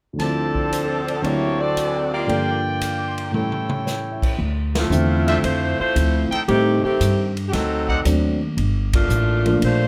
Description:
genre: jazz, big band swing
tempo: 114 BPM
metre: 4/4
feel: swing 69% on 8ths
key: D minor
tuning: A4 = 440 Hz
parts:
  - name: dark baby grand piano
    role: accompaniment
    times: 0.1-9.9 s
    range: D2 to E5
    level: -26 LUFS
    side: equal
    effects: none
  - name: warm saxophone section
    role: melody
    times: 0.2-9.9 s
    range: Eb3 to D5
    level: -24 LUFS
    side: equal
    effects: none
  - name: clear trumpet section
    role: stabs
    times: 0.2-8.0 s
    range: D4 to D6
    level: -29 LUFS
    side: equal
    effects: none
  - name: swinging big-band drum kit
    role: drums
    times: 0.2-9.8 s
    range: crash cymbal, hi-hat, kick drum, ride cymbal, snare drum, toms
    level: -30 LUFS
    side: equal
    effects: none
  - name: upright bass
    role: bass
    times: 4.4-9.9 s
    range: G1 to A2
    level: -23 LUFS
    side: equal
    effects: none
room: light reverb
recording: close, detailed microphones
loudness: -21 LUFS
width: mono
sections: 0.2-4.4 A section; 4.4-9.9 B section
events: drum fill 3.3-3.9; band accent 4.6, 8.8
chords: 0.2 Dm7; 1.2 D7; 2.3 Gm7; 3.3 A7; 4.4 Dm9; 6.5 Am7b5; 7.5 D7b9; 8.6 Gm9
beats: | 0.19 0.71 1.24 1.76 | 2.29 2.81 3.34 3.86 | 4.38 4.91 5.43 5.96 | 6.48 7.00 7.53 8.05 | 8.57 9.10 9.62

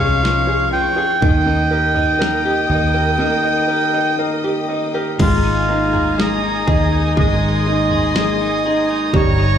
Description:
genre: pop ballad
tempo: 61 BPM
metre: 4/4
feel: straight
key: Ab major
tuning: A4 = 438 Hz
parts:
  - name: melodica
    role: melody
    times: 0.0-9.6 s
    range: F4 to Eb6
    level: -19 LUFS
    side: right 1 dB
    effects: plate reverb, slapback echo, digital delay
  - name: felt-muted upright piano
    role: accompaniment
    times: 0.0-9.6 s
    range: Eb3 to Eb5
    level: -21 LUFS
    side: right 1 dB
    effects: plate reverb, slapback echo
  - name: warm studio string section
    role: sustained chords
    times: 0.0-9.6 s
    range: G4 to Eb6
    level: -26 LUFS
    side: left 1 dB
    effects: plate reverb
  - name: direct-recorded clean electric guitar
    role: arpeggios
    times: 0.0-9.6 s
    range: Eb3 to Ab4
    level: -24 LUFS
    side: left 5 dB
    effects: plate reverb, slapback echo
  - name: vintage muted fingered electric bass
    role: bass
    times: 0.0-9.6 s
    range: G1 to Eb2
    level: -20 LUFS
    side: equal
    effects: none
  - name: pop drum kit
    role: drums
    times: 0.0-9.4 s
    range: crash cymbal, kick drum, snare drum, toms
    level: -20 LUFS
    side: right 1 dB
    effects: none
  - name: dark studio violin section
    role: second line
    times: 5.2-9.6 s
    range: Ab5 to Bb5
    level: -28 LUFS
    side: right 2 dB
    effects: plate reverb, slapback echo
room: light reverb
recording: live gig heard through the venue's PA, club reverb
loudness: -14 LUFS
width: side -9 dB against mid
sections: 0.0-5.2 A section; 5.2-9.6 B section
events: break 3.2-5.2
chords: 0.0 Db; 1.2 Eb; 5.2 Absus2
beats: 0.24 | 1.22 2.21 3.19 4.19 | 5.20 6.18 7.17 8.15 | 9.13

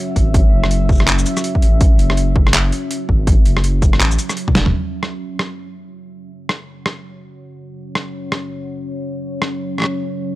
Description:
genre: half-time drum and bass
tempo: 164 BPM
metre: 4/4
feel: swing 60% on 16ths, half-time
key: unclear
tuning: A4 = 440 Hz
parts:
  - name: deep dark ambient pad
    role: sustained chords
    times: 0.0-10.4 s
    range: F#3 to F#5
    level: -25 LUFS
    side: left 1 dB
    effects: chorus, built-in reverb, sidechain pumping
  - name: saturated sub bass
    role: bass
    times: 0.2-4.7 s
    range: E1 to A1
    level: -16 LUFS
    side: equal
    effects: tube saturation
  - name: boom bap sampler-style drum kit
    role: drums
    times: 0.2-9.9 s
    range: handclaps, hi-hat, rim click, shaker, snare drum, toms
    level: -19 LUFS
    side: equal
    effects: overdrive
  - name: electronic kick drum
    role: drums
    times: 0.2-4.5 s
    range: none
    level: -14 LUFS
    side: equal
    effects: none
room: little or no reverb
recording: dry, gritty hardware recording, transformer saturation, cassette tape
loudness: -14 LUFS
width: side -17 dB against mid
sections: 0.0-4.7 A section; 4.7-10.4 B section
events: drop 0.0-4.7; drum fill 4.5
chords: 0.0 F#5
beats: | 0.34 0.71 1.07 1.44 | 1.81 2.17 2.54 2.90 | 3.27 3.64 4.00 4.37 | 4.73 5.10 5.47 5.83 | 6.20 6.56 6.93 7.29 | 7.66 8.03 8.39 8.76 | 9.12 9.49 9.86 10.22

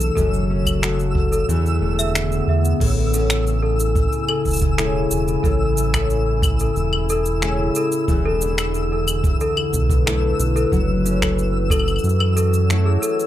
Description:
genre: folktronica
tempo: 91 BPM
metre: 4/4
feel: straight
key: A major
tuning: A4 = 440 Hz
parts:
  - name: worn celesta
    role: second line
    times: 0.0-13.3 s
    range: G#4 to E5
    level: -25 LUFS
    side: left 2 dB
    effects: vintage 12-bit sampler grit, ping-pong delay
  - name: warbly tape-like pad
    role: sustained chords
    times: 0.0-13.3 s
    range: B2 to G#5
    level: -26 LUFS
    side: left 1 dB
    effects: chorus, built-in reverb
  - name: concert harp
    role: arpeggios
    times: 0.0-13.3 s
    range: E2 to F#4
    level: -25 LUFS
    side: left 3 dB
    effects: ping-pong delay
  - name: round analog bass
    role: bass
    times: 0.0-13.0 s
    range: E1 to F#2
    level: -21 LUFS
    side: right 1 dB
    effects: none
  - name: organic electronic drum kit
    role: drums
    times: 0.0-13.3 s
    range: claves, crash cymbal, finger snaps, shaker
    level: -25 LUFS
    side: left 1 dB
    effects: none
  - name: twinkling granular texture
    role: texture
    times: 0.0-13.3 s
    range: E6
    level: -31 LUFS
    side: left 1 dB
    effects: built-in reverb
  - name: kick drum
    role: drums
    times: 0.2-11.8 s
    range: none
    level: -22 LUFS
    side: right 1 dB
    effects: none
room: little or no reverb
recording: none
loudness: -17 LUFS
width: side -12 dB against mid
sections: 0.0-2.8 A section; 2.8-13.3 B section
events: none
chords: 0.2 F#m7; 1.5 E7sus4; 2.8 Amaj7; 8.1 E7sus4; 10.7 F#m7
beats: | 0.17 0.83 1.49 2.15 | 2.81 3.47 4.13 4.79 | 5.45 6.11 6.76 7.42 | 8.08 8.74 9.40 10.06 | 10.72 11.38 12.04 12.70

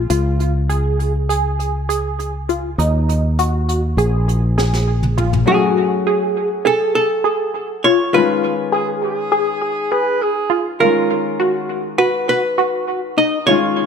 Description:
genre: progressive instrumental, band music in an uneven meter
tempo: 202 BPM (eighths)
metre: 9/8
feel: straight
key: Db mixolydian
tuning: A4 = 439 Hz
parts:
  - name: tight sequenced synth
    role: arpeggios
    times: 0.0-13.9 s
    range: Eb4 to Ab4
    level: -19 LUFS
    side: equal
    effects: chorus, phaser, tape echo
  - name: fretless electric bass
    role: bass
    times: 0.0-5.4 s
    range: Bb1 to Eb2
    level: -17 LUFS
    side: equal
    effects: none
  - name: jazz brush drum kit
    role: drums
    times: 0.1-5.5 s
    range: hi-hat, snare drum, toms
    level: -24 LUFS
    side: left 2 dB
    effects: none
  - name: archtop guitar, miked and amplified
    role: melody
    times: 5.5-13.9 s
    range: Ab4 to Eb5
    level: -18 LUFS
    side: right 1 dB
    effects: tape echo
  - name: warm baby grand piano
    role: accompaniment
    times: 5.5-13.9 s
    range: Eb3 to Gb4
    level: -22 LUFS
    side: left 5 dB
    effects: tape echo
  - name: warm alto saxophone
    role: second line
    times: 8.7-10.7 s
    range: Ab4 to Cb5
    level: -20 LUFS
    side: right 2 dB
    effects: none
room: light reverb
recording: echo-heavy mix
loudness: -15 LUFS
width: side -6 dB against mid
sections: 0.0-5.5 A section; 5.5-13.9 B section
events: drum fill 4.6-5.5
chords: 0.1 Db; 2.8 Ebm; 4.0 Bb5; 5.5 Gbmadd9; 8.1 Db7; 10.8 Cbsus2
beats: | 0.10 0.40 0.70 1.00 1.30 1.59 1.89 2.19 2.49 | 2.79 3.09 3.38 3.68 3.98 4.28 4.58 4.87 5.17 | 5.47 5.76 6.06 6.36 6.66 6.95 7.25 7.54 7.84 | 8.14 8.43 8.73 9.03 9.32 9.62 9.91 10.21 10.51 | 10.80 11.10 11.40 11.69 11.99 12.29 12.58 12.88 13.17 | 13.47 13.77

